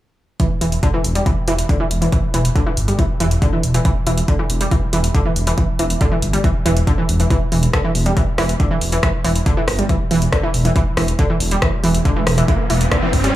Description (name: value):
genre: driving peak-time techno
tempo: 139 BPM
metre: 4/4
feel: straight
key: E minor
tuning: A4 = 440 Hz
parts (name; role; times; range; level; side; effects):
- analog pluck; riff; 0.4-13.3 s; D3 to G3; -20 LUFS; equal; chorus, overdrive, sidechain pumping, tape echo
- electronic kick drum; drums; 0.4-13.2 s; none; -18 LUFS; equal; overdrive
- punchy analog drum machine; drums; 0.4-13.3 s; hi-hat, rim click; -24 LUFS; equal; overdrive, sidechain pumping on hats
- dark detuned saw bass; bass; 0.6-13.3 s; E1 to G1; -18 LUFS; equal; sidechain pumping
- riser; sound effects; 11.7-13.4 s; none; -23 LUFS; equal; none
room: light reverb, digital ambience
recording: small room ambience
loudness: -15 LUFS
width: side -14 dB against mid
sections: 0.4-13.4 A section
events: riser 11.7-13.4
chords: none